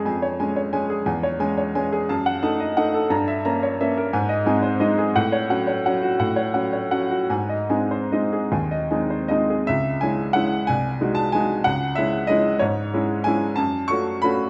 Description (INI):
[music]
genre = classical, piano waltz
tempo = 142-198 BPM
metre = 3/4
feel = rubato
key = C# minor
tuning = A4 = 440 Hz
[part]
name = bright baby grand piano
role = solo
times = 0.0-14.5 s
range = B#1 to C#6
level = -22 LUFS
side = equal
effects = none
[sound]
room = wet recital hall reverb, RT60 1.6 s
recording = none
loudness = -22 LUFS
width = mono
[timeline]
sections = 0.0-9.7 A section; 9.7-14.5 B section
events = none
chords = 0.0 C#/E#; 1.1 C#m/E; 2.1 D#dim/F#; 3.1 Gdim7; 4.1 G#; 5.1 F#m/A; 7.3 G#; 9.7 C#m; 10.7 G#7/B#; 11.7 C#m; 13.6 F#m